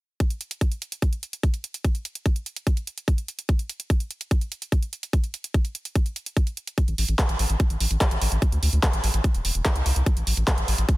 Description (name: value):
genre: psychedelic trance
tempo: 146 BPM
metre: 4/4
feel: straight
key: A minor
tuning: A4 = 439 Hz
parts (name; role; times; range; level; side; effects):
- drum and bass drum kit; drums; 0.2-11.0 s; handclaps, hi-hat; -29 LUFS; right 1 dB; overdrive
- electronic kick drum; drums; 0.2-11.0 s; none; -21 LUFS; equal; overdrive
- round analog bass; bass; 6.9-10.8 s; E1 to D2; -23 LUFS; equal; none
room: little or no reverb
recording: dense, heavily limited modern master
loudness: -22 LUFS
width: side -19 dB against mid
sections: 0.2-11.0 A section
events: none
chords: none